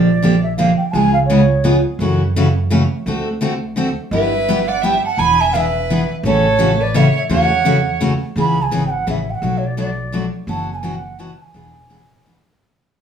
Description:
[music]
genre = acoustic string swing (jazz manouche)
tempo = 170 BPM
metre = 3/4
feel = swing 61% on 8ths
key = A major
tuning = A4 = 440 Hz
[part]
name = hollow bansuri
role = melody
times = 0.0-1.8, 4.1-12.3 s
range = C#5 to B5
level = -18 LUFS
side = right 3 dB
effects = plate reverb
[part]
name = picked steel-string acoustic guitar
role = accompaniment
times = 0.0-12.4 s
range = B2 to A4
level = -17 LUFS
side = left 1 dB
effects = none
[part]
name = upright bass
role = bass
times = 0.0-12.4 s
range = E1 to F#2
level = -21 LUFS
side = right 1 dB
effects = none
[part]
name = rich violin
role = second line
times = 4.1-8.0 s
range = A4 to G#5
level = -22 LUFS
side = right 5 dB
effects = none
[sound]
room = wet club reverb, RT60 0.9 s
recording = studio ambience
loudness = -14 LUFS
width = side -8 dB against mid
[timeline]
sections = 0.0-8.4 A section; 8.4-12.6 B section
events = fade-out 8.4-12.6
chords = 0.0 Bb6; 0.9 C#7; 2.0 F#m7; 3.1 D7; 4.1 G6; 5.2 E7; 6.2 A6; 8.4 C#m7; 9.4 Bm7; 10.5 F#7sus4; 11.5 E7

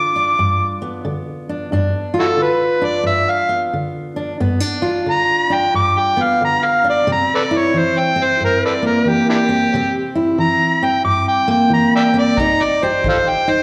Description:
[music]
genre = acoustic country blues, solo or duo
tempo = 90 BPM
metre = 4/4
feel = swing 64% on 8ths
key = unclear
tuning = A4 = 440 Hz
[part]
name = overdriven harmonica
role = melody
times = 0.0-13.6 s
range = D4 to D6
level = -18 LUFS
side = equal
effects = slapback echo
[part]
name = fingerpicked steel-string acoustic guitar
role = accompaniment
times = 0.0-13.6 s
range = G2 to G4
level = -21 LUFS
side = equal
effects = slapback echo
[part]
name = kick drum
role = drums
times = 12.4-13.2 s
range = none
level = -28 LUFS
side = equal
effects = none
[sound]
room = moderate club reverb, RT60 0.7 s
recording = live gig heard through the venue's PA, recital hall reverb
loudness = -16 LUFS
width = mono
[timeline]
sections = 0.0-13.6 A section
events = harmonica solo 0.0-13.6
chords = 0.0 G7; 7.1 C7; 12.4 Cm7

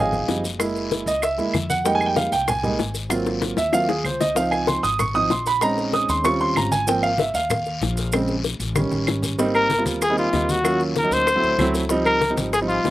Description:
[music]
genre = Afro-Cuban jazz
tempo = 191 BPM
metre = 4/4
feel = straight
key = Ab major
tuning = A4 = 440 Hz
[part]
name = warm grand piano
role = accompaniment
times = 0.0-12.9 s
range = Db3 to Eb6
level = -21 LUFS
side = right 2 dB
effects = slapback echo
[part]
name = upright bass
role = bass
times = 0.0-12.9 s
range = Gb1 to F2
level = -29 LUFS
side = left 1 dB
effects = none
[part]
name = bongos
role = percussion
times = 0.1-12.9 s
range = none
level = -26 LUFS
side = left 7 dB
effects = none
[part]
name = congas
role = percussion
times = 0.1-12.9 s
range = none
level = -30 LUFS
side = left 1 dB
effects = none
[part]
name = maracas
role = percussion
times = 0.1-12.9 s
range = none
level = -34 LUFS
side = right 3 dB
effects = none
[part]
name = guiro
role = percussion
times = 0.3-12.9 s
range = none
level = -34 LUFS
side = left 6 dB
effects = none
[part]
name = claves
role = percussion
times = 0.6-12.7 s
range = none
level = -29 LUFS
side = right 3 dB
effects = none
[part]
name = warm trumpet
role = melody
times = 9.5-12.9 s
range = F4 to C5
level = -20 LUFS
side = left 1 dB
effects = none
[sound]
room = little or no reverb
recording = recorded outdoors, with no room sound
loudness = -19 LUFS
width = side -15 dB against mid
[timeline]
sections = 0.0-9.4 A section; 9.4-12.9 B section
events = grand piano solo 0.0-9.4; drum fill 3.1-4.4, 8.8-9.4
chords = 0.0 Dbmaj9#11 (rootless); 0.6 Gb9; 1.9 Fm11; 3.1 Ab13; 4.4 Dbmaj7; 5.6 Bbm11; 6.2 Eb13; 6.9 Ab6; 8.1 Bbm7; 8.8 A7#11; 9.4 Abmaj9; 10.6 Ebm9; 11.3 D9; 11.9 Dbmaj9#11

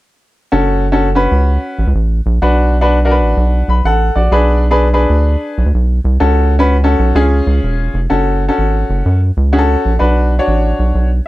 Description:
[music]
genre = uptempo 1960s-style soul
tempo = 127 BPM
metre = 4/4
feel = swing 66% on 8ths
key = F# minor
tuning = A4 = 441 Hz
[part]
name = bright upright piano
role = accompaniment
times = 0.5-11.3 s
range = C#4 to B5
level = -14 LUFS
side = left 1 dB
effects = none
[part]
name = rubbery square bass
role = bass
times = 0.5-11.2 s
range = E1 to F#2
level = -12 LUFS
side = equal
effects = none
[sound]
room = light reverb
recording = none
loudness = -11 LUFS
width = side -17 dB against mid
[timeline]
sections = 0.5-8.1 A section; 8.1-11.3 B section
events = upright piano fill 3.4-4.3, 10.9-11.3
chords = 0.5 F#m; 2.4 Bm; 4.3 G#dim/B; 6.2 F#m/C#; 7.2 C#; 8.1 F#m; 10.0 Bm

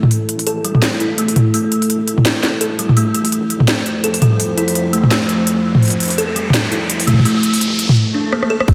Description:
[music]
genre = half-time drum and bass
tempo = 168 BPM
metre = 4/4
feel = swing 57% on 16ths, half-time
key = unclear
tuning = A4 = 439 Hz
[part]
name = deep dark ambient pad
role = sustained chords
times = 0.0-8.7 s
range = F3 to C5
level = -26 LUFS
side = equal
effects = chorus, built-in reverb, sidechain pumping
[part]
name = deep soft wobble bass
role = bass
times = 0.0-8.7 s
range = E1 to Bb1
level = -35 LUFS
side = equal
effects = none
[part]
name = drum and bass drum kit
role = drums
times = 0.0-8.7 s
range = crash cymbal, hi-hat, rim click, snare drum, toms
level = -17 LUFS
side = equal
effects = studio reverb
[part]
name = buzzing kalimba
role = arpeggios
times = 0.5-8.7 s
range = G3 to A4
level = -21 LUFS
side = equal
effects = vintage 12-bit sampler grit, low-pass filter, delay
[part]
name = riser, swell and impact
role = sound effects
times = 4.3-8.7 s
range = none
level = -27 LUFS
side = equal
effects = none
[part]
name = electronic kick drum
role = drums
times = 8.7 s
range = none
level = -10 LUFS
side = equal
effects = soft clipping on kick, studio reverb
[sound]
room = wet lush hall reverb, RT60 1.9 s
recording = dense, heavily limited modern master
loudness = -15 LUFS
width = mono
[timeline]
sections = 0.0-8.7 A section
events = build-up 0.0-8.7; filter sweep on kalimba 0.0-8.7; riser 4.3-8.0; break 8.0-8.7; swell 8.0-8.7; drum fill 8.3-8.7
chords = 0.0 A5; 3.0 Bb5

